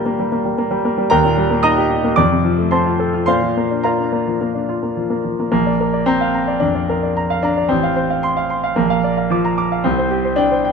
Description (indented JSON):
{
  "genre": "classical, virtuoso piano study",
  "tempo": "110 BPM",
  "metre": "4/4",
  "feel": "uneven beats, rubato",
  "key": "Bb major",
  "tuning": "A4 = 437 Hz",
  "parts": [
    { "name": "clear concert grand piano", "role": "solo", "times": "0.0-10.7 s", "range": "A1 to Eb6", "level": "-15 LUFS", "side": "equal", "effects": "none" }
  ],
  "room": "moderate recital hall reverb, RT60 1.8 s",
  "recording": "close, detailed microphones",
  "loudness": "-15 LUFS",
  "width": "side -5 dB against mid",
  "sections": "0.0-5.5 A section; 5.5-10.7 B section",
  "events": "none",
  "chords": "0.0 Gm/Bb; 1.1 Eb; 2.2 F; 3.3 Bb; 7.7 F/A; 8.8 Bb; 9.8 C5"
}